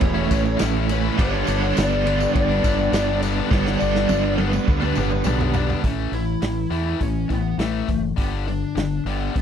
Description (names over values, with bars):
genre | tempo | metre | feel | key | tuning
classic rock | 103 BPM | 4/4 | straight | A mixolydian | A4 = 440 Hz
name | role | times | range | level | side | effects
lead guitar through a small cranked amp | melody | 0.0-9.4 s | A3 to D5 | -26 LUFS | left 2 dB | overdrive, slapback echo
mellow tonewheel organ | sustained chords | 0.0-5.8 s | E3 to B4 | -33 LUFS | equal | none
biting overdriven guitar | riff | 0.0-5.8 s | G2 to E4 | -26 LUFS | right 13 dB | tremolo
fuzz guitar | riff | 0.0-5.8 s | G2 to E4 | -27 LUFS | equal | distortion
growling fingered electric bass | bass | 0.0-9.4 s | E1 to E2 | -24 LUFS | equal | overdrive
vintage drum kit | drums | 0.0-9.4 s | hi-hat, kick drum, ride cymbal, snare drum, toms | -25 LUFS | equal | none
tight distorted guitar | riff | 0.1-9.4 s | G2 to E4 | -27 LUFS | left 13 dB | distortion
tambourine | percussion | 0.3-5.8 s | none | -41 LUFS | right 19 dB | none
room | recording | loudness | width
little or no reverb | dry, close 1970s-style studio recording | -19 LUFS | side -8 dB against mid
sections
0.0-5.8 A section; 5.8-9.4 B section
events
drum fill 3.5-5.8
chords
0.0 A; 1.2 G; 5.8 A5; 8.2 G5